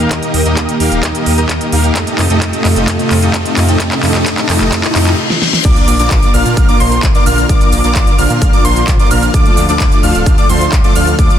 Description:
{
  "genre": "EDM, festival progressive house",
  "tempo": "130 BPM",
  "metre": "4/4",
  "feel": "straight",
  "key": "Bb major",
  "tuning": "A4 = 444 Hz",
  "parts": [
    { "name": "lush unison pad", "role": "sustained chords", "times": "0.0-11.4 s", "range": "C3 to G4", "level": "-19 LUFS", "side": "equal", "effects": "chorus, sidechain pumping" },
    { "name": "dense compressed supersaw", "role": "riff", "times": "0.0-11.4 s", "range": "A3 to F5", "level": "-16 LUFS", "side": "equal", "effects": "sidechain pumping, tape echo" },
    { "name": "wide detuned saw bass", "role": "bass", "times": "0.0-11.3 s", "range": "D1 to Bb2", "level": "-16 LUFS", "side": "equal", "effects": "chorus, sidechain pumping" },
    { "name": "riser, reverse cymbal and sub drop", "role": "sound effects", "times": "1.2-7.5 s", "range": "none", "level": "-21 LUFS", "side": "left 2 dB", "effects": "none" },
    { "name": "big-room dance drum kit", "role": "drums", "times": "0.1-11.4 s", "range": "crash cymbal, handclaps, hi-hat, shaker, snare drum", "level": "-19 LUFS", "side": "equal", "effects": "none" },
    { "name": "electronic kick drum", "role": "drums", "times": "0.1-11.3 s", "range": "none", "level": "-12 LUFS", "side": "equal", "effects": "high-pass filter on kick" },
    { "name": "wide unison lead", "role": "arpeggios", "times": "5.6-11.4 s", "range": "C6 to F6", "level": "-17 LUFS", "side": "equal", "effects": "wide subtle chorus, sidechain pumping, tape echo" }
  ],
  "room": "light reverb",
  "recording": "dense, heavily limited modern master",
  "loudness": "-9 LUFS",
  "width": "side -10 dB against mid",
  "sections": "0.0-5.6 A section; 5.6-11.4 B section",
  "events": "build-up 0.0-5.6; drum fill 0.0-5.2, 5.3-5.6; riser 1.2-5.2; reverse cymbal 4.7-5.6; drop 5.6-11.4; impact 5.6-7.5",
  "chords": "0.0 Eb; 2.0 F; 5.6 Bb; 9.3 Dm"
}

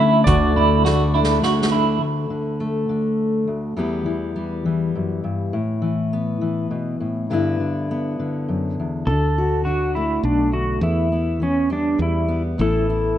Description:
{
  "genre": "acoustic folk duo or small band",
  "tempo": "102 BPM",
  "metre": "3/4",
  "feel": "straight",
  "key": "D major",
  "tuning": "A4 = 440 Hz",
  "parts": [
    { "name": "pedal steel guitar", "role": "melody", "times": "0.0-1.4, 9.1-13.2 s", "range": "C#4 to E5", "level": "-22 LUFS", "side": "equal", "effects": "none" },
    { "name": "fingerpicked steel-string acoustic guitar", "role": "accompaniment", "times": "0.0-13.2 s", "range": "D2 to G4", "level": "-21 LUFS", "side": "left 2 dB", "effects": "none" },
    { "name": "semi-hollow electric guitar", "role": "arpeggios", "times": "0.0-2.0 s", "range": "E4 to F#4", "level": "-20 LUFS", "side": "right 6 dB", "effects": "tremolo" },
    { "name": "woody fretless electric bass", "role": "bass", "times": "0.3-1.4, 9.1-13.2 s", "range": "A1 to E2", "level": "-22 LUFS", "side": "equal", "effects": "none" },
    { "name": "soft-mallet drum kit", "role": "drums", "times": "0.3-1.8 s", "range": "hi-hat, kick drum, snare drum", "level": "-26 LUFS", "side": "equal", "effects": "none" }
  ],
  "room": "light reverb, small room ambience",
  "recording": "rough home demo mix, nothing above 10.5 kHz",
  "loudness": "-18 LUFS",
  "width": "side -11 dB against mid",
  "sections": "0.0-2.0 A section; 2.0-9.1 B section; 9.1-13.2 C section",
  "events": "drum fill 0.8-2.0",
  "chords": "0.0 D; 2.0 D5; 3.8 Em; 5.5 Asus2; 7.3 G6; 9.1 D; 10.8 Em; 12.6 Asus2"
}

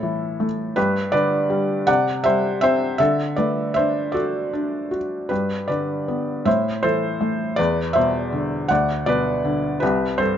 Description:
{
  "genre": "classical, lyrical solo piano",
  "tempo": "54 BPM (dotted quarters)",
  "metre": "6/8",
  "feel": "rubato",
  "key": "G major",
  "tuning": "A4 = 440 Hz",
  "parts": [
    { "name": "felt-muted upright piano", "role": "solo", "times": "0.0-10.4 s", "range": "C2 to F#5", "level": "-19 LUFS", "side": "equal", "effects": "none" }
  ],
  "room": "light reverb",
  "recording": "nothing above 7.7 kHz",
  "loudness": "-19 LUFS",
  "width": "side -9 dB against mid",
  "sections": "0.0-10.4 A section",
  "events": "none",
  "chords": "0.0 A5; 0.8 G; 1.9 Csus2; 3.0 D; 5.3 G; 6.5 Am; 7.6 E5; 8.7 Bm/D; 9.8 C5"
}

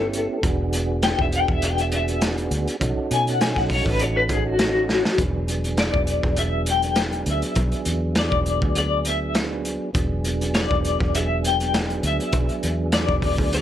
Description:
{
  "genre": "straight-eighth soul blues",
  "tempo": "101 BPM",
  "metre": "4/4",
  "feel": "swing 54% on 16ths",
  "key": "E mixolydian",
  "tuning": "A4 = 440 Hz",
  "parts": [
    { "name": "electric guitar through a small old amp", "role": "melody", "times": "0.0-13.6 s", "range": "F#4 to G#5", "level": "-24 LUFS", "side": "left 4 dB", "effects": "tremolo" },
    { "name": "mellow tonewheel organ", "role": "accompaniment", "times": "0.0-13.6 s", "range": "F#3 to A4", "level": "-27 LUFS", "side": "right 3 dB", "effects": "slow rotary speaker, overdrive, chorus vibrato" },
    { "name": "vintage muted fingered electric bass", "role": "bass", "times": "0.0-13.6 s", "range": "E1 to B2", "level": "-25 LUFS", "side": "equal", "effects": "none" },
    { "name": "crunchy breakbeat drum kit", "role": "drums", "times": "0.1-13.6 s", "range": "hi-hat, kick drum, snare drum", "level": "-24 LUFS", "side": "equal", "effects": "none" }
  ],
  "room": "light reverb",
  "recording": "lossy compression artefacts",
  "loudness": "-20 LUFS",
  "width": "side -11 dB against mid",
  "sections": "0.0-5.2 A section; 5.2-13.6 B section",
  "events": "clean electric guitar solo 0.0-5.2; drum fill 4.9",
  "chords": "0.4 E9; 2.8 B9; 5.2 E9"
}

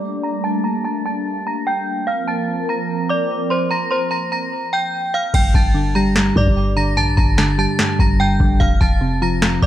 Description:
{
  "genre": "hip hop, trap",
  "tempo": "147 BPM",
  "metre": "4/4",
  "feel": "half-time",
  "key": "G minor",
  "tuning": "A4 = 438 Hz",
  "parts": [
    { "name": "metallic FM bell", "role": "melody", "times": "0.0-9.7 s", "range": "C5 to Bb6", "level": "-21 LUFS", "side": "equal", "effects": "chorus, low-pass filter, ping-pong delay" },
    { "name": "hollow soft pad", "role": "sustained chords", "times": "0.0-5.3 s", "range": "F3 to Bb4", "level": "-23 LUFS", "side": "right 1 dB", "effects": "chorus, low-pass filter" },
    { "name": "soft electric-piano-like synth keys", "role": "accompaniment", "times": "5.3-9.7 s", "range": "F2 to G3", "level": "-19 LUFS", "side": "equal", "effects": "chorus, low-pass filter" },
    { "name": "warm 808-style bass", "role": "bass", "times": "5.3-9.7 s", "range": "F1 to G2", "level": "-19 LUFS", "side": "equal", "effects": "none" },
    { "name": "booming analog drum machine", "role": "drums", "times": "5.3-9.7 s", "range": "crash cymbal, kick drum, snare drum", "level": "-17 LUFS", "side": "equal", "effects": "vintage 12-bit sampler grit" }
  ],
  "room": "digital ambience",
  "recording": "none",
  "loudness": "-16 LUFS",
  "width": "side -12 dB against mid",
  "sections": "0.0-5.3 A section; 5.3-9.7 B section",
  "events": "filter sweep 0.0-5.3; hi-hats muted 5.3-9.7",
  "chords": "0.0 Gmadd9; 2.1 Fsus4; 5.3 Gmadd9; 8.6 Fsus4"
}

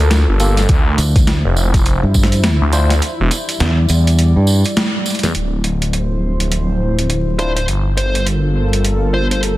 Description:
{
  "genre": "glitch hop",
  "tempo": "103 BPM",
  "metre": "4/4",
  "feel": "swing 60% on 16ths",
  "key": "D minor",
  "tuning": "A4 = 439 Hz",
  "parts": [
    { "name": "dark analog pad", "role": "sustained chords", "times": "0.0-9.6 s", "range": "F3 to D5", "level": "-24 LUFS", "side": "equal", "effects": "chorus, sidechain pumping" },
    { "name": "phased detuned saw bass", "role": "bass", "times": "0.0-9.6 s", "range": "D1 to E2", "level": "-15 LUFS", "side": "equal", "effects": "phaser, tube saturation" },
    { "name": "boom bap sampler-style drum kit", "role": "drums", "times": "0.1-9.6 s", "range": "hi-hat, snare drum", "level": "-20 LUFS", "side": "equal", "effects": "overdrive" },
    { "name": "tambourine", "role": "percussion", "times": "0.1-5.3 s", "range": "none", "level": "-27 LUFS", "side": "right 4 dB", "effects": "none" },
    { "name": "barky tine electric piano", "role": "stabs", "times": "0.4-2.9, 7.4-7.6 s", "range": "Bb3 to C5", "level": "-26 LUFS", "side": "left 1 dB", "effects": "medium stereo tremolo, sidechain pumping, dub echo" },
    { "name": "electronic kick drum", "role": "drums", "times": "0.7-2.3 s", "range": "none", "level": "-12 LUFS", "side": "equal", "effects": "overdrive" },
    { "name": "fingered electric bass", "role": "bass", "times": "1.0-4.6 s", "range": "D2 to G2", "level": "-13 LUFS", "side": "equal", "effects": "none" },
    { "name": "dark smooth lead guitar", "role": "melody", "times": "7.4-9.4 s", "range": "C5", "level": "-22 LUFS", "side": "left 1 dB", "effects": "overdrive, dub echo" }
  ],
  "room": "light reverb, digital ambience",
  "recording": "dense, heavily limited modern master, vinyl crackle",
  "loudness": "-13 LUFS",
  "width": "side -16 dB against mid",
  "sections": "0.0-5.3 A section; 5.3-9.6 B section",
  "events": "kick drops out 3.0-5.3; band accent 4.8",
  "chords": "0.0 Gm9; 0.7 Dm9; 3.0 Em7; 5.3 Dm9; 7.7 Gm9"
}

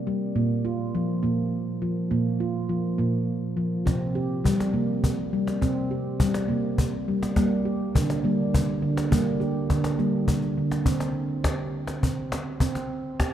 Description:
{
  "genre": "world meditative, meditative tuned percussion",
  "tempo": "69 BPM (dotted quarters)",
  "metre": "6/8",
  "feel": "straight",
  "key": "unclear",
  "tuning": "A4 = 439 Hz",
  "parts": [
    { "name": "handpan", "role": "arpeggios", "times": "0.0-13.3 s", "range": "Bb2 to G4", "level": "-24 LUFS", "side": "right 1 dB", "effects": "none" },
    { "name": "cajon", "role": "percussion", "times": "3.9-13.3 s", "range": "none", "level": "-27 LUFS", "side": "left 1 dB", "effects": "none" }
  ],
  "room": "wet church reverb, RT60 3.7 s",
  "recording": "dark, warm production",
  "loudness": "-23 LUFS",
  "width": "side -10 dB against mid",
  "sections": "0.0-10.9 A section; 10.9-13.3 B section",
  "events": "none",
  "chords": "0.4 Bb5; 3.9 C5; 7.4 Gm; 10.9 C5"
}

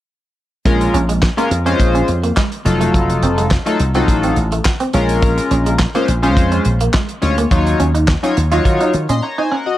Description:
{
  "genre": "early-eighties boogie funk",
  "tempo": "105 BPM",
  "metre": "4/4",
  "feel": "straight",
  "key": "Bb minor",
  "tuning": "A4 = 437 Hz",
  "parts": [
    { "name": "chorused polysynth", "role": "accompaniment", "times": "0.7-9.8 s", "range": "Gb3 to C6", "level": "-17 LUFS", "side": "left 2 dB", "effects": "none" },
    { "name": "slap bass with an envelope filter", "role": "bass", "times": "0.7-9.2 s", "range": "F1 to Eb3", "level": "-16 LUFS", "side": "equal", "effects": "none" },
    { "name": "damped 70s drum kit", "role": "drums", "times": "0.7-9.2 s", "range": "handclaps, hi-hat, kick drum, snare drum", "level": "-18 LUFS", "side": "equal", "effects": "none" },
    { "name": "clean electric guitar", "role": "riff", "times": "0.8-9.6 s", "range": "Ab3 to F4", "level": "-22 LUFS", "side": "right 3 dB", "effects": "analog chorus" }
  ],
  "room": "small room ambience",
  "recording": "dark, warm production",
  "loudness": "-13 LUFS",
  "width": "side -14 dB against mid",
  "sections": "0.7-9.8 A section",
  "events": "break 9.2-9.8",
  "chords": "0.7 Bbm7; 2.7 F7b9; 4.9 Bbm7; 7.5 Ebm9"
}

